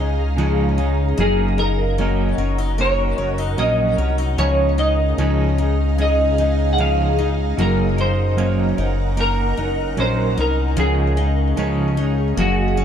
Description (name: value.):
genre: dream pop.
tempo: 75 BPM.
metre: 4/4.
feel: straight.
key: Gb major.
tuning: A4 = 441 Hz.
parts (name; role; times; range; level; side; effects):
semi-hollow electric guitar; melody; 0.0-12.8 s; Gb4 to Gb5; -23 LUFS; right 1 dB; ensemble chorus, ping-pong delay.
clean electric guitar; accompaniment; 0.0-12.8 s; Db3 to Bb4; -24 LUFS; right 4 dB; tremolo, wide subtle chorus.
ethereal airy pad; sustained chords; 0.0-12.8 s; Ab4 to Bb5; -27 LUFS; left 2 dB; ensemble chorus, built-in reverb, phaser.
picked twelve-string acoustic guitar; arpeggios; 0.0-12.8 s; Db3 to Bb4; -25 LUFS; left 7 dB; wide subtle chorus, ping-pong delay.
chorused synth bass; bass; 0.0-12.8 s; Gb1 to Db2; -20 LUFS; equal; none.
room: light reverb.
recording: dark, warm production.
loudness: -16 LUFS.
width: side -8 dB against mid.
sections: 0.0-12.8 A section.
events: none.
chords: 0.0 Dbadd9; 1.2 Gb6; 4.4 Dbadd9; 7.6 Gb6; 10.8 Dbadd9.